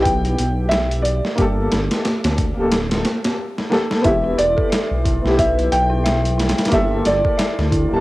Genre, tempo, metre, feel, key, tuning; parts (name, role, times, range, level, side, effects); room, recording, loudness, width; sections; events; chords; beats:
trip hop; 90 BPM; 4/4; swing 58% on 16ths; E minor; A4 = 442 Hz
felt-muted upright piano; melody; 0.0-8.0 s; D5 to G5; -21 LUFS; equal; cassette tape, tape echo
dark upright piano; accompaniment; 0.0-8.0 s; Bb3 to A5; -22 LUFS; left 1 dB; tremolo, cassette tape, tape echo
dark detuned saw bass; bass; 0.0-8.0 s; D1 to D2; -21 LUFS; equal
bowed-like drone; texture; 0.1-3.4 s; G4; -36 LUFS; right 3 dB
dusty soul sampler-style drum kit; drums; 0.1-7.9 s; hi-hat, kick drum, snare drum; -21 LUFS; equal; overdrive
dark detuned synth bell; arpeggios; 4.0-8.0 s; E4 to E5; -24 LUFS; equal; chorus, phaser, cassette tape, analog delay
light reverb; home recording on cassette; -16 LUFS; side -18 dB against mid
0.0-4.0 A section; 4.0-8.0 B section
drum fill 3.5-4.0
0.0 Em; 1.4 Gmadd9; 4.0 Em; 6.7 Gmadd9
0.05 0.72 | 1.38 2.05 2.72 3.38 | 4.05 4.72 5.38 6.05 | 6.72 7.38